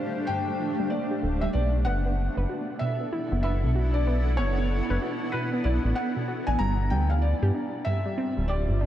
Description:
IDM; 95 BPM; 4/4; swing 62% on 16ths; A4 = 439 Hz
felt-muted upright piano; melody; 0.0-8.9 s; B4 to Bb5; -32 LUFS; left 1 dB; lush chorus, tape echo
granular cloud pad; sustained chords; 0.0-8.9 s; G3 to F#5; -31 LUFS; equal; built-in reverb, lush chorus
warbly dusty pluck; arpeggios; 0.0-8.9 s; G2 to B4; -32 LUFS; right 1 dB; chorus, tape echo
round analog bass; bass; 1.2-8.9 s; D1 to G2; -25 LUFS; equal
flickering grainy texture; texture; 2.3-8.9 s; D4; -39 LUFS; left 1 dB; built-in reverb
moderate cathedral reverb, RT60 5.3 s; dreamy mix soaked in reverb; -24 LUFS; side -12 dB against mid
0.0-8.9 A section
0.0 G7(no3); 1.5 Bm7; 6.6 Gm7
0.28 0.91 | 1.55 2.18 2.81 3.44 | 4.07 4.70 5.33 5.97 | 6.60 7.23 7.86 8.49

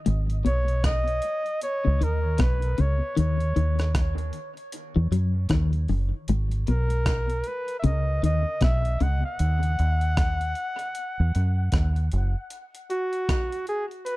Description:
dub reggae; 77 BPM; 4/4; swing 60% on 16ths; G# minor; A4 = 439 Hz
clean electric guitar; riff; 0.1-9.1 s; F#2 to F#3; -29 LUFS; left 5 dB; tremolo, dub echo
deep dub fingered electric bass; bass; 0.1-12.3 s; F#1 to F#2; -23 LUFS; equal
breakbeat sampler-style drum kit; drums; 0.1-14.2 s; hi-hat, kick drum, rim click; -27 LUFS; equal
clear flugelhorn; melody; 0.5-14.2 s; F#4 to F#5; -30 LUFS; equal; dub echo
little or no reverb; dry, close 1970s-style studio recording; -22 LUFS; side -18 dB against mid
0.0-14.2 A section
0.1 G#m; 3.2 D#m; 6.3 G#m; 9.4 D#m; 12.5 N.C.
| 0.06 0.84 1.62 2.40 | 3.17 3.95 4.73 5.51 | 6.29 7.06 7.84 8.62 | 9.40 10.18 10.95 11.73 | 12.51 13.29 14.07

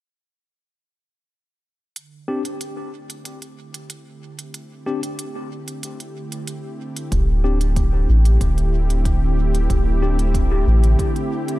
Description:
ambient dub; 93 BPM; 4/4; straight; A4 = 440 Hz
warm analog pad; sustained chords; 2.0-11.6 s; D3 to G4; -27 LUFS; equal; chorus
electronic hi-hat; drums; 2.0-11.6 s; -35 LUFS; right 3 dB; studio reverb, dub echo
tine electric piano; stabs; 2.3-10.2 s; C4 to G4; -29 LUFS; left 3 dB; medium stereo tremolo, low-pass filter, dub echo
soft dub sub bass; bass; 7.1-11.0 s; D1 to A1; -16 LUFS; equal
electronic kick drum; drums; 7.1-11.1 s; -23 LUFS; equal; studio reverb
light reverb, digital ambience; -17 LUFS; side -17 dB against mid
2.0-11.6 A section
fade-in on analog synth pad 2.0-11.6
2.0 D7sus4
| 1.96 2.61 3.25 3.90 | 4.54 5.19 5.83 6.48 | 7.12 7.77 8.41 9.06 | 9.70 10.35 10.99

